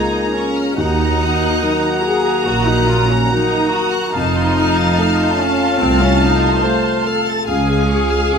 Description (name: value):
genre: cinematic, emotional film score for orchestra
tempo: 72 BPM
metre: 4/4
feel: rubato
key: unclear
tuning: A4 = 442 Hz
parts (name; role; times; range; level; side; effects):
- warm symphonic violin section; melody; 0.0-8.4 s; Ab5 to Bb5; -26 LUFS; left 2 dB; none
- bright oboe; second line; 0.0-8.4 s; F5 to Ab5; -26 LUFS; right 1 dB; none
- clear studio violin section; second line; 0.0-8.4 s; F5 to A6; -26 LUFS; left 2 dB; none
- dark clarinet; second line; 0.0-8.4 s; C4 to C5; -26 LUFS; left 3 dB; none
- small flute group; second line; 0.0-8.4 s; Ab5 to Bb5; -24 LUFS; right 3 dB; none
- dark symphonic viola section; accompaniment; 0.0-8.4 s; C4 to C5; -20 LUFS; equal; none
- felt-muted upright piano; accompaniment; 0.0-8.4 s; Db2 to Bb4; -23 LUFS; equal; none
- dark French horn section; sustained chords; 0.0-8.4 s; Ab3 to Ab4; -22 LUFS; left 4 dB; none
- dark symphonic cello section; bass; 0.8-8.2 s; C2 to Bb2; -22 LUFS; right 1 dB; none
- dark symphonic double bass section; bass; 0.8-8.2 s; F1 to Eb2; -22 LUFS; right 3 dB; none
room: light reverb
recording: close, detailed microphones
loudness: -13 LUFS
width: side -6 dB against mid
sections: 0.0-8.4 A section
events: none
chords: 0.0 Bbm7/Db; 0.8 Ebm; 4.1 F; 7.5 Db